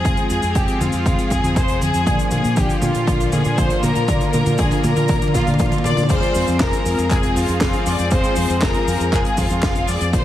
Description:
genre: italo disco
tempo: 119 BPM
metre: 4/4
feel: straight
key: F dorian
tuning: A4 = 440 Hz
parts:
  - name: bright studio violin section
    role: melody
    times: 0.0-10.2 s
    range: F4 to D6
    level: -22 LUFS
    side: left 1 dB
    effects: tape echo, shimmer reverb
  - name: bright chamber string section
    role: sustained chords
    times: 0.0-10.2 s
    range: D3 to Ab4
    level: -25 LUFS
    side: left 1 dB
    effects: low-pass filter, shimmer reverb
  - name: fingered electric bass with an envelope filter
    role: bass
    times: 0.0-10.2 s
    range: F1 to Bb2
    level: -23 LUFS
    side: equal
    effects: none
  - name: tight funk drum kit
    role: drums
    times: 0.0-10.2 s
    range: cabasa, crash cymbal, handclaps, hi-hat, snare drum, toms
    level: -23 LUFS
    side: equal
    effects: none
  - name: mellow synth brass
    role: stabs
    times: 0.1-10.2 s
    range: Bb3 to F5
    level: -26 LUFS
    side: left 3 dB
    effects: chorus, phaser, shimmer reverb
  - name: electronic kick drum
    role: drums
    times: 0.1-10.2 s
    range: none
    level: -21 LUFS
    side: equal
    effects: none
room: moderate lush hall reverb, RT60 2.4 s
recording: vinyl crackle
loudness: -16 LUFS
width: side -12 dB against mid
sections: 0.0-6.1 A section; 6.1-10.2 B section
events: drum fill 0.0-6.1; filter sweep on analog polysynth 0.0-6.1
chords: 0.0 Fm; 2.1 Bb; 6.1 Fm

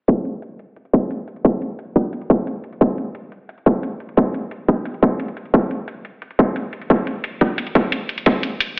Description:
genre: drum and bass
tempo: 176 BPM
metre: 4/4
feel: straight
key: none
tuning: none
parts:
  - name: electronic hi-hat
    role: drums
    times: 0.1-8.7 s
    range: none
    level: -27 LUFS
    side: equal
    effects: overdrive
  - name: electronic kick drum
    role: drums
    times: 0.1-8.3 s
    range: none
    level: -14 LUFS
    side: equal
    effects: overdrive, high-pass filter on kick
room: digital ambience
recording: played on a big sound system in a bare room, stone room reverb, low-pass filter, AM radio sound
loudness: -17 LUFS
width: side -29 dB against mid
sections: 0.1-8.8 A section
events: filter sweep 0.1-8.8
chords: none

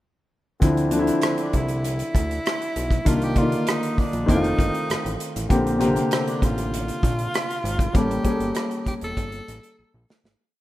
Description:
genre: lush 1970s-style soul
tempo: 98 BPM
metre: 4/4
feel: straight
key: D minor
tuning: A4 = 440 Hz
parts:
  - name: warm baby grand piano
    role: accompaniment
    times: 0.6-10.4 s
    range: C3 to D5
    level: -23 LUFS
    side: left 1 dB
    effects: none
  - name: fat analog bass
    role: bass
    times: 0.6-10.4 s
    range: E1 to D2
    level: -27 LUFS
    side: equal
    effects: none
  - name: modern studio drum kit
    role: drums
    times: 0.6-10.4 s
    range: hi-hat, kick drum, rim click, snare drum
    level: -24 LUFS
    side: equal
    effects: none
  - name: edgy tenor saxophone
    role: melody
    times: 1.3-10.1 s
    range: C4 to A4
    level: -30 LUFS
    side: right 1 dB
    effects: tape echo
room: light reverb, studio reverb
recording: rough home demo mix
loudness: -20 LUFS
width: side -15 dB against mid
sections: 0.6-10.4 verse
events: fade-out 7.9-10.4; drum fill 9.8-10.4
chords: 0.6 Dm9; 3.1 Cm11; 4.3 F7; 5.5 Bb69; 7.9 A7b9

